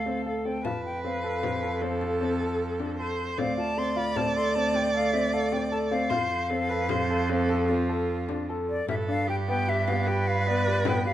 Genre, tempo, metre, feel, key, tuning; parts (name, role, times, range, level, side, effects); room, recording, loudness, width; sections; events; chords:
contemporary instrumental, chamber music in an uneven meter; 153 BPM; 7/4; straight; F lydian; A4 = 439 Hz
silver concert flute; melody; 0.0-11.1 s; D5 to C6; -31 LUFS; left 2 dB
warm viola; second line; 0.0-11.1 s; F4 to D5; -30 LUFS; right 1 dB
rich cello; bass; 0.0-11.1 s; D2 to G2; -30 LUFS; right 3 dB
warm baby grand piano; arpeggios; 0.1-11.1 s; B3 to A4; -31 LUFS; left 3 dB
frame drum; percussion; 0.3-11.0 s; -35 LUFS; left 6 dB
clear woodwind section; sustained chords; 8.9-11.1 s; G3 to B4; -36 LUFS; equal
light reverb; close, detailed microphones; -24 LUFS; side -12 dB against mid
0.0-8.9 A section; 8.9-11.1 B section
0.0 Dm7; 0.6 F; 3.4 Dm7; 6.1 F; 8.9 G7